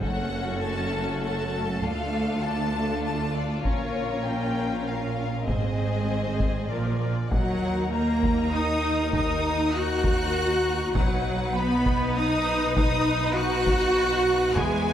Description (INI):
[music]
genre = cinematic, epic orchestral film score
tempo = 99 BPM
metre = 3/4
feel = straight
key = Eb minor from 7.3 s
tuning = A4 = 441 Hz
[part]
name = warm symphonic violin section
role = melody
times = 0.0-14.9 s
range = C#5 to Gb6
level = -32 LUFS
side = left 2 dB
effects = none
[part]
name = rich symphonic violin section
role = second line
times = 0.0-14.9 s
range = Eb4 to B#4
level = -32 LUFS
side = left 4 dB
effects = none
[part]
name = rich symphonic viola section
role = accompaniment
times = 0.0-14.9 s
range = E#3 to Gb4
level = -30 LUFS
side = right 1 dB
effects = none
[part]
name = dark French horn section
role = sustained chords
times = 0.0-14.9 s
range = Gb3 to Gb4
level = -32 LUFS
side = left 2 dB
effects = none
[part]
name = bright studio cello section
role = bass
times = 0.0-14.9 s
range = D2 to Gb4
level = -30 LUFS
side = right 1 dB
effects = none
[part]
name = rich studio double bass section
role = bass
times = 0.0-14.9 s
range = F#1 to E2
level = -30 LUFS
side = right 3 dB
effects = none
[part]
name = taiko ensemble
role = drums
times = 0.0-14.9 s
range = none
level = -28 LUFS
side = equal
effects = none
[sound]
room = wet concert hall reverb, RT60 2.2 s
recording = none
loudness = -23 LUFS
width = side -10 dB against mid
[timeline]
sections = 0.0-7.3 A section; 7.3-14.9 B section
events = none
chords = 0.0 F#m; 1.8 Dm; 3.6 A#m; 5.5 G#; 6.7 A#7; 7.3 Ebm; 11.0 B